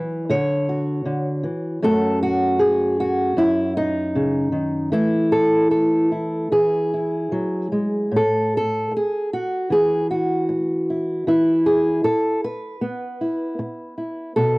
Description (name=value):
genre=folk, solo fingerstyle acoustic guitar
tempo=77 BPM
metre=4/4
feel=rubato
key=A major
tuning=A4 = 440 Hz
part: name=fingerpicked old ladder-braced acoustic guitar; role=solo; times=0.0-14.6 s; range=F#2 to C#5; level=-18 LUFS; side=equal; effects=cassette tape
room=light reverb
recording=home recording on cassette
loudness=-18 LUFS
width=side -25 dB against mid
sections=0.0-8.1 A section; 8.1-14.6 B section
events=none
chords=0.3 Dmaj9; 1.8 F#m; 3.4 D#m7/F#; 4.9 Esus4; 6.5 E; 8.1 A5; 11.3 E5